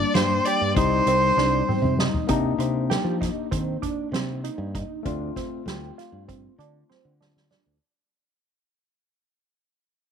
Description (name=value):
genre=progressive instrumental, band music in an uneven meter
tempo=196 BPM (eighths)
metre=9/8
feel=straight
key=C dorian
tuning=A4 = 440 Hz
part: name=clear violin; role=melody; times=0.0-1.9 s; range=C5 to D5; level=-22 LUFS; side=equal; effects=none
part: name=barky tine electric piano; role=accompaniment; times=0.0-7.8 s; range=G3 to F4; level=-29 LUFS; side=left 15 dB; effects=overdrive
part: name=tight sequenced synth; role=arpeggios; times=0.0-7.8 s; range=C4 to G4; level=-30 LUFS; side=right 13 dB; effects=chorus, phaser
part: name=fingered electric bass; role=bass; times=0.0-7.8 s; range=C2 to F3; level=-27 LUFS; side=equal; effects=none
part: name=soft-mallet drum kit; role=drums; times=0.1-7.6 s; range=hi-hat, kick drum, snare drum, toms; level=-28 LUFS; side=right 1 dB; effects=none
room=light reverb, small room ambience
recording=1960s-style stereo with parts hard left and right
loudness=-21 LUFS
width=side -7 dB against mid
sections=0.0-2.3 A section; 2.3-7.8 B section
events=drum fill 1.4-2.3, 6.9-7.8; fade-out 2.3-7.8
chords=0.0 Gm; 0.8 Cm; 2.3 Cm7; 5.0 Dm7